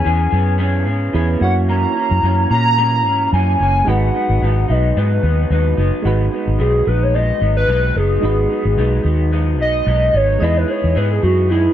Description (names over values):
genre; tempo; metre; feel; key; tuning
indie pop, bedroom pop; 110 BPM; 4/4; swing 55% on 16ths; G# minor; A4 = 439 Hz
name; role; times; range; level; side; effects
warbly nostalgic lead; melody; 0.0-11.7 s; E4 to A#5; -18 LUFS; equal; lush chorus, tape echo
electric guitar through a small old amp; accompaniment; 0.0-11.7 s; F#2 to G#4; -23 LUFS; left 1 dB; analog chorus, warbly pitch drift
soft electric-piano-like synth keys; accompaniment; 0.0-11.7 s; G#3 to D#5; -25 LUFS; right 5 dB; chorus, cassette tape
vintage muted fingered electric bass; bass; 0.0-11.7 s; F#1 to A#2; -16 LUFS; equal; none
room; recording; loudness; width
light reverb; dark, warm production; -14 LUFS; side -11 dB against mid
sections
0.0-6.1 A section; 6.1-11.7 B section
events
soft synth lead solo 6.1-11.7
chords
0.0 C#m7; 1.4 F#7; 3.9 G#m7; 10.4 Emaj7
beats
0.05 0.60 1.14 | 1.69 2.23 2.78 3.33 | 3.87 4.42 4.96 5.51 | 6.05 6.60 7.14 7.69 | 8.23 8.78 9.33 9.87 | 10.42 10.96 11.51